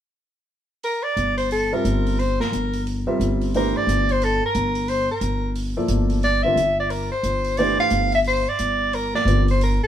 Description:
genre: modal jazz.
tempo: 178 BPM.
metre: 4/4.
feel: swing 62% on 8ths.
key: unclear.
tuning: A4 = 440 Hz.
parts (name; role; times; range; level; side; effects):
mellow soprano saxophone; melody; 0.8-9.9 s; A4 to F5; -21 LUFS; equal; none.
open jazz drum kit; drums; 0.8-9.7 s; hi-hat, snare drum; -35 LUFS; right 1 dB; none.
upright bass; bass; 1.2-9.8 s; G1; -22 LUFS; equal; none.
warm grand piano; accompaniment; 1.7-9.5 s; D3 to E5; -24 LUFS; right 1 dB; none.
room: light reverb.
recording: band playing live in one room.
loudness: -19 LUFS.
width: side -10 dB against mid.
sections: 0.8-9.9 A section.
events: none.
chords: 0.8 Gm.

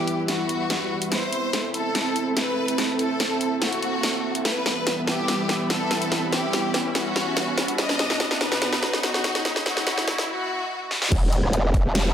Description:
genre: heavy wobble dubstep.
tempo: 144 BPM.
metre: 4/4.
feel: half-time.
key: E harmonic minor.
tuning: A4 = 441 Hz.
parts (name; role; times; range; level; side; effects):
bright studio violin section; melody; 0.0-11.0 s; F#4 to D#5; -28 LUFS; left 2 dB; dub echo.
supersaw pad; sustained chords; 0.0-12.1 s; B2 to B5; -30 LUFS; right 1 dB; sidechain pumping.
riser and impact; sound effects; 1.1-12.1 s; none; -32 LUFS; equal; none.
ethereal airy pad; texture; 0.0-12.1 s; B3 to B5; -31 LUFS; right 2 dB; ensemble chorus, built-in reverb, sidechain pumping.
dubstep drum kit; drums; 0.1-12.0 s; crash cymbal, hi-hat, rim click, snare drum; -25 LUFS; equal; high-pass filter on snare, high-pass filter on hats, high-pass filter on cymbals.
growl bass; bass; 11.1-12.1 s; E1; -22 LUFS; equal; chorus, overdrive.
electronic kick drum; drums; 11.1-11.8 s; none; -22 LUFS; equal; none.
room: moderate lush hall reverb, RT60 1.7 s.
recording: high-pass filter.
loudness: -21 LUFS.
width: side -9 dB against mid.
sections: 0.0-11.1 A section; 11.1-12.1 B section.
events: build-up 0.0-11.1; drum fill 0.0-10.3, 10.9; riser 1.1-10.3; break 10.3-11.1; drop 11.1-12.1; impact 11.1-12.1.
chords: 0.0 Em; 1.1 Am; 4.5 Em; 7.8 B; 11.1 Em.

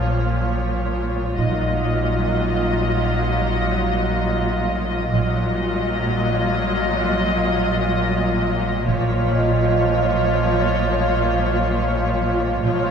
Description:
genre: cinematic, suspense film score.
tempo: 64 BPM.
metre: 4/4.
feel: straight.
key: unclear.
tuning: A4 = 441 Hz.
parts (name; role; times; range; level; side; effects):
muted studio violin section; melody; 0.0-12.9 s; Db5 to Eb5; -26 LUFS; left 2 dB; none.
muted studio viola section; accompaniment; 0.0-12.9 s; F3 to F4; -23 LUFS; equal; none.
muted studio cello section; bass; 0.0-12.9 s; Bb2; -24 LUFS; right 1 dB; none.
deep rumbling drone; drone; 0.0-12.9 s; Bb1; -27 LUFS; left 1 dB; built-in reverb.
vibraphone with medium hard mallets; texture; 0.0-12.9 s; Eb4 to F5; -28 LUFS; right 5 dB; none.
muted studio double bass section; bass; 1.4-12.9 s; Bb1; -25 LUFS; right 3 dB; none.
taiko ensemble; drums; 1.4-3.2, 8.9-10.7 s; none; -34 LUFS; left 1 dB; none.
room: wet scoring stage reverb, RT60 1.9 s.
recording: recorded in a church or concert hall.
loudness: -18 LUFS.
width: side -7 dB against mid.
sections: 0.0-12.9 A section.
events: none.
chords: 0.0 Bbm; 1.4 Ebmadd9/Bb; 8.9 Bbm.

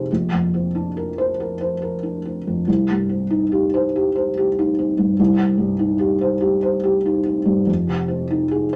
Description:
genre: neoclassical minimalist piano.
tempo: 72 BPM.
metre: 3/4.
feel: rubato.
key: C minor.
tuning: A4 = 440 Hz.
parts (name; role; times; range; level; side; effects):
felt-muted upright piano; solo; 0.0-8.8 s; Bb1 to C5; -20 LUFS; equal; none.
room: moderate small room reverb, RT60 0.5 s.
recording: none.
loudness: -20 LUFS.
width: mono.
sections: 0.0-8.8 A section.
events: none.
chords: 0.1 Bbadd9; 2.7 Cm; 7.7 Fm7.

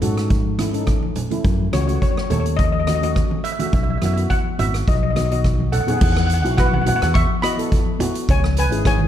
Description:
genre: calypso.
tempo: 105 BPM.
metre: 4/4.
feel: swing 54% on 16ths.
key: E major.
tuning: A4 = 440 Hz.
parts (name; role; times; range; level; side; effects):
steel pan; accompaniment; 0.0-9.0 s; A3 to A4; -26 LUFS; equal; none.
fingered electric bass; bass; 0.0-9.1 s; G#1 to G#2; -21 LUFS; equal; none.
street-band drum kit; drums; 0.0-9.0 s; crash cymbal, hi-hat, kick drum, rim click; -21 LUFS; equal; none.
congas; percussion; 0.0-9.1 s; none; -28 LUFS; right 4 dB; none.
steel pan; melody; 1.7-9.1 s; A4 to C#6; -23 LUFS; left 2 dB; none.
room: light reverb.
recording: dark, warm production.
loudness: -16 LUFS.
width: side -10 dB against mid.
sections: 0.0-6.0 A section; 6.0-9.1 B section.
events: drum fill 5.4-6.0.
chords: 0.0 Amaj7; 1.5 F#m; 3.7 Bsus4; 4.9 B; 6.0 Esus2; 8.3 C#m.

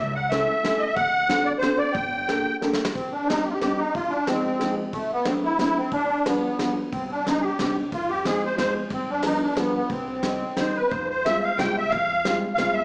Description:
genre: musette waltz.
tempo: 182 BPM.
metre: 3/4.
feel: swing 55% on 8ths, rubato.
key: C harmonic minor.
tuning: A4 = 435 Hz.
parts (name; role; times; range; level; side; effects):
musette accordion; melody; 0.0-12.8 s; A3 to G5; -26 LUFS; equal; none.
upright bass; bass; 0.0-2.4, 6.9-12.8 s; G1 to G2; -40 LUFS; equal; none.
dark upright piano; accompaniment; 0.3-12.8 s; Eb3 to A4; -30 LUFS; equal; none.
soft brush drum kit; drums; 0.3-12.7 s; hi-hat, kick drum, ride cymbal, snare drum; -34 LUFS; equal; none.
room: wet recital hall reverb, RT60 1.6 s.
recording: heard from further back in the room, small speaker sound.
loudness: -24 LUFS.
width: mono.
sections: 0.0-3.0 A section; 3.0-10.9 B section; 10.9-12.8 C section.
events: drum fill 2.6-3.0.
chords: 0.0 A/C#; 1.0 D7; 2.0 Gmadd9; 3.0 Cmadd9; 3.9 Fm7; 4.9 D7; 5.9 G7; 6.9 Cmadd9; 7.9 Fm7; 8.9 G7; 9.9 Cm; 10.9 Fmadd9.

